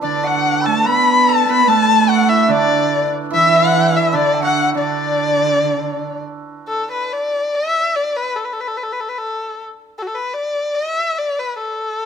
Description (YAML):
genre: chinese traditional, Chinese chamber ensemble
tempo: 72 BPM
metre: 2/4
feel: rubato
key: D gong mode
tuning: A4 = 440 Hz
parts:
  - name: warm erhu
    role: melody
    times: 0.0-12.1 s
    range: F#4 to B5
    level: -17 LUFS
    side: left 2 dB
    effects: none
  - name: bright reedy large dizi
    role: second line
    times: 0.0-6.2 s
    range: D5 to B5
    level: -21 LUFS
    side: left 9 dB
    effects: none
  - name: dark cello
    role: second line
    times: 0.0-6.2 s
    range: D3 to B3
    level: -20 LUFS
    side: right 9 dB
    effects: none
  - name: hammered dulcimer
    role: second line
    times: 0.0-8.5 s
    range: A3 to B4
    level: -21 LUFS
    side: right 4 dB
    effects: none
room: light reverb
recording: close, detailed microphones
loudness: -14 LUFS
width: side -7 dB against mid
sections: 0.0-6.7 A section; 6.7-12.1 B section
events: none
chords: none